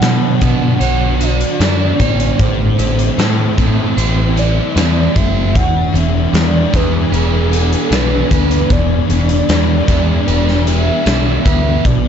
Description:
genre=rock, shoegaze and dream pop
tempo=76 BPM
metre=4/4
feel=straight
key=E mixolydian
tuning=A4 = 440 Hz
part: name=pure sine lead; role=melody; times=0.0-12.1 s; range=G#4 to F#5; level=-22 LUFS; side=right 3 dB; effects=chorus, phaser, analog delay
part: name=glassy FM pad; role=sustained chords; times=0.0-12.1 s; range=D3 to G#5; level=-21 LUFS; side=left 2 dB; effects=ensemble chorus, built-in reverb
part: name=overdriven semi-hollow guitar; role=riff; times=0.0-12.1 s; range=E2 to C#5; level=-20 LUFS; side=right 13 dB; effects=reverse reverb
part: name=thick fuzz guitar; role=riff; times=0.0-12.1 s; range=A2 to C#5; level=-21 LUFS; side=left 10 dB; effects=distortion, ensemble chorus
part: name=growling picked electric bass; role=bass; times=0.0-12.1 s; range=E1 to B2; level=-16 LUFS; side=equal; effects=overdrive
part: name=big rock drum kit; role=drums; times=0.0-12.0 s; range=hi-hat, kick drum, snare drum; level=-18 LUFS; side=equal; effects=none
room=small room ambience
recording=dark, warm production, nothing above 7.9 kHz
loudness=-11 LUFS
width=side -8 dB against mid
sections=0.0-12.1 A section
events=none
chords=0.0 Bmadd9; 2.4 Am; 5.6 E7

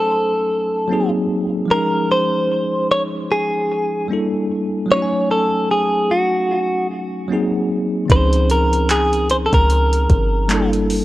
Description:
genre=contemporary R&B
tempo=75 BPM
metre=4/4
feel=swing 58% on 16ths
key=Db major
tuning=A4 = 440 Hz
part: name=direct-recorded clean electric guitar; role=melody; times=0.0-10.7 s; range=Gb4 to Db5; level=-18 LUFS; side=equal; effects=digital delay
part: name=bell-like tine electric piano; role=accompaniment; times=0.0-11.0 s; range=Eb3 to Ab5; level=-21 LUFS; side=equal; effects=fast stereo tremolo
part: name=clean 808-style bass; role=bass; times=8.1-11.0 s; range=G1 to Db2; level=-18 LUFS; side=equal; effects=none
part: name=smooth R&B drum kit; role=drums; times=8.1-11.0 s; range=handclaps, hi-hat, kick drum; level=-19 LUFS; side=equal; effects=none
room=light reverb, digital ambience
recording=worn, warbling old tape, cassette tape, warbly pitch drift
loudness=-15 LUFS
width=side -16 dB against mid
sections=0.0-11.0 A section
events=none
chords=0.0 Gbm6; 0.9 Ab7; 1.7 Dbmaj7; 4.1 Gm6; 4.9 Gbm6; 7.3 Ab7; 8.1 Dbmaj7; 10.5 Gm6

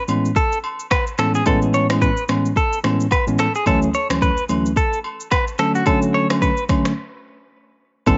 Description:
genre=afrobeats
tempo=109 BPM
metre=4/4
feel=swing 58% on 16ths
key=unclear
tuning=A4 = 440 Hz
part: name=direct-recorded clean electric guitar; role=riff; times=0.0-8.2 s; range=F#4 to C#5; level=-24 LUFS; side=equal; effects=cassette tape, tape echo
part: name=tine electric piano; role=accompaniment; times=0.1-8.2 s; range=D2 to C#4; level=-21 LUFS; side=equal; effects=cassette tape
part: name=afro-pop drum kit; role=drums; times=0.1-8.2 s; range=finger snaps, kick drum, rim click, shaker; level=-24 LUFS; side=equal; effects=cassette tape
part: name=agogo bells and woodblock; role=percussion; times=0.1-8.2 s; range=none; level=-32 LUFS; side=equal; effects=none
part: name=woody FM bass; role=bass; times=8.1-8.2 s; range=A1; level=-19 LUFS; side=equal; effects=none
room=light reverb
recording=home recording on cassette, nothing above 7.7 kHz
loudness=-19 LUFS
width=mono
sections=0.0-8.2 A section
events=break 7.0-8.1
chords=0.0 Amaj7; 3.7 Dmaj7; 5.6 Bm7 (rootless)

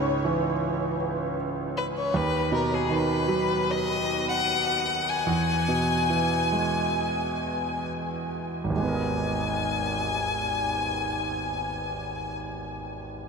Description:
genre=pop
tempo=62-79 BPM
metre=4/4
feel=straight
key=G# minor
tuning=A4 = 444 Hz
part: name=rich violin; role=melody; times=0.0-12.3 s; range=G#4 to G#5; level=-28 LUFS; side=left 4 dB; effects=analog delay
part: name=bright concert grand piano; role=accompaniment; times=0.0-13.3 s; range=G#1 to D#5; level=-27 LUFS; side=right 2 dB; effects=none
room=wet huge ambient reverb, RT60 8.5 s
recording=dreamy mix soaked in reverb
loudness=-24 LUFS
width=side -5 dB against mid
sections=0.0-8.8 A section; 8.8-12.7 B section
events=slowing down 2.1-8.8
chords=0.0 C#m; 2.1 B/D#; 5.3 E; 8.8 G#madd9

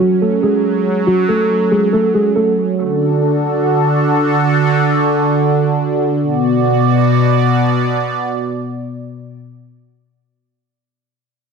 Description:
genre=hip hop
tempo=free time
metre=none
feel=none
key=B dorian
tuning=A4 = 440 Hz
part: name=muted felt-like synth keys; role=melody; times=0.0-2.5 s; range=F#3 to A4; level=-14 LUFS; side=right 1 dB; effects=chorus, tape echo
part: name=sweeping resonant pad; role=sustained chords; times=0.0-9.4 s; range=B2 to D5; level=-14 LUFS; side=right 1 dB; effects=chorus
room=moderate plate reverb, RT60 1.2 s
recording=dense, heavily limited modern master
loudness=-12 LUFS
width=side -5 dB against mid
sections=0.0-6.2 A section; 6.2-9.6 B section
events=none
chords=0.0 F#m; 2.8 D; 6.2 Bm

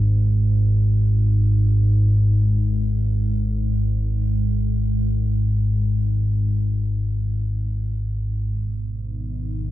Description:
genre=dark ambient drone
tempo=free time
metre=none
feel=none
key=G# minor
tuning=A4 = 441 Hz
part: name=deep rumbling drone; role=drone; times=0.0-9.7 s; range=G#1 to G#2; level=-18 LUFS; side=equal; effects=built-in reverb
part: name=dark analog pad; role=sustained chords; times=8.5-9.7 s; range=B3 to D#4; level=-34 LUFS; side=right 2 dB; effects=chorus
room=wet huge ambient reverb, RT60 8.2 s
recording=dark, warm production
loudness=-18 LUFS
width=side -15 dB against mid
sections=0.0-8.6 A section; 8.6-9.7 B section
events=none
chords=0.0 N.C.; 8.6 G#m

